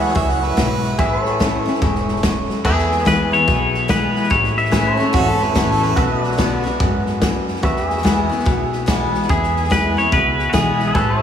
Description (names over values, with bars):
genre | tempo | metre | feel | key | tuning
honky-tonk and classic country | 144 BPM | 4/4 | swing 63% on 8ths | unclear | A4 = 437 Hz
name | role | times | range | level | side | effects
clear harmonica | second line | 0.0-1.2, 5.1-6.1 s | F#4 to F#5 | -24 LUFS | right 3 dB | none
picked steel-string acoustic guitar | accompaniment | 0.0-11.2 s | E2 to F#4 | -22 LUFS | left 3 dB | none
pedal steel guitar | sustained chords | 0.0-11.2 s | F#4 to E5 | -23 LUFS | right 1 dB | none
upright bass | bass | 0.0-11.2 s | E1 to F#2 | -24 LUFS | equal | none
natural country drum kit | drums | 0.0-11.1 s | crash cymbal, hi-hat, kick drum, snare drum | -21 LUFS | equal | none
twangy electric guitar | melody | 2.7-5.8, 9.3-11.2 s | F#4 to E5 | -19 LUFS | left 1 dB | diffuse ambient delay
tonewheel organ | accompaniment | 9.3-11.2 s | E4 to C#5 | -26 LUFS | right 2 dB | slow rotary speaker
room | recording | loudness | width
wet huge ambient reverb, RT60 5.0 s | dreamy mix soaked in reverb, small room ambience | -15 LUFS | side -8 dB against mid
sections
0.0-2.6 A section; 2.6-11.2 B section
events
none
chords
0.0 E; 1.0 A; 2.6 E; 4.3 A; 6.0 Bm; 7.6 E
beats
0.15 0.57 | 0.98 1.40 1.81 2.23 | 2.65 3.06 3.48 3.89 | 4.31 4.72 5.14 5.55 | 5.97 6.38 6.80 7.21 | 7.63 8.04 8.46 8.87 | 9.29 9.70 10.12 10.53 | 10.95